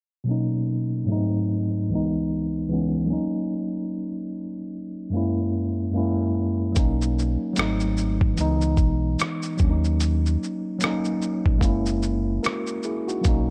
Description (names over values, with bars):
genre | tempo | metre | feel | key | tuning
lo-fi hip hop | 74 BPM | 4/4 | swing 59% on 16ths | unclear | A4 = 441 Hz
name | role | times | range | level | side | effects
mellow tine electric piano | accompaniment | 0.2-13.5 s | C#2 to A#4 | -26 LUFS | equal | none
sub bass with octave | bass | 6.8-13.5 s | F#1 to D#2 | -26 LUFS | equal | none
lo-fi sampler-style drum kit | drums | 6.8-13.5 s | hi-hat, kick drum, rim click, shaker | -26 LUFS | equal | none
room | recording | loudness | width
little or no reverb | low-pass filter | -24 LUFS | mono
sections
0.3-6.8 A section; 6.8-13.5 B section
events
filter sweep 0.3-6.8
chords
0.3 Bmaj7; 1.1 G#7b9; 1.9 C#m7; 3.1 D#m7; 5.1 F#7; 6.8 Bmaj7; 7.6 G#7b9; 8.4 C#m7; 9.6 D#m7; 11.6 F#7